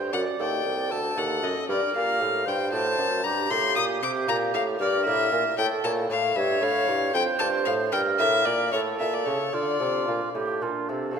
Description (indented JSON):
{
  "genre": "classical, baroque-style sonata movement with continuo",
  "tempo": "77 BPM (dotted quarters)",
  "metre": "6/8",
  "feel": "straight",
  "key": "G minor, D minor from 4.8 s",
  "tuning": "A4 = 439 Hz",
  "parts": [
    { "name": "bright baroque flute", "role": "second line", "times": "0.0-11.2 s", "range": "F4 to F5", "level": "-28 LUFS", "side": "right 6 dB", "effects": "none" },
    { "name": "lute", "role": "accompaniment", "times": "0.0-11.2 s", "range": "D2 to D5", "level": "-33 LUFS", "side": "left 2 dB", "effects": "none" },
    { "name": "warm bassoon", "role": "bass", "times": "0.0-11.2 s", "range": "C2 to D3", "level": "-29 LUFS", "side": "right 1 dB", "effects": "none" },
    { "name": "warm violin", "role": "melody", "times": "0.1-11.2 s", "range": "A4 to Eb6", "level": "-27 LUFS", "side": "left 6 dB", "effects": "none" }
  ],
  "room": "wet concert hall reverb, RT60 2.1 s",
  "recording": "none",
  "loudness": "-22 LUFS",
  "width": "side -6 dB against mid",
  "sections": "0.0-11.2 A section",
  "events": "none",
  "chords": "0.1 D; 1.7 Gm; 2.5 D7/G; 3.2 Gm; 4.8 Em7b5/G; 5.6 A; 6.4 A7/G; 7.1 Dm/F; 7.9 Em7b5/G; 8.7 A; 9.5 Dm"
}